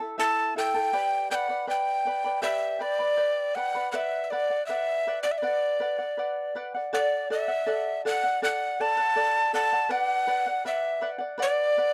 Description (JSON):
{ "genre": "andean folk", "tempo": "80 BPM", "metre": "4/4", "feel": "straight", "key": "unclear", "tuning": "A4 = 440 Hz", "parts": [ { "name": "charango", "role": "accompaniment", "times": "0.0-11.9 s", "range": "E4 to B5", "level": "-33 LUFS", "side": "equal", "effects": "none" }, { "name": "breathy alto recorder", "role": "melody", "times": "0.2-11.9 s", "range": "D5 to A5", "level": "-28 LUFS", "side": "equal", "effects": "none" } ], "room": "studio ambience", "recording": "dry, close 1970s-style studio recording", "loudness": "-27 LUFS", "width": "mono", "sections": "0.0-6.9 A section; 6.9-11.9 B section", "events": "none", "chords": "0.0 A5; 0.9 G; 3.9 Bm; 6.9 D; 9.9 Bm", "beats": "0.18 | 0.93 1.68 2.43 3.18 | 3.93 4.68 5.43 6.18 | 6.93 7.67 8.42 9.17 | 9.91 10.66 11.41" }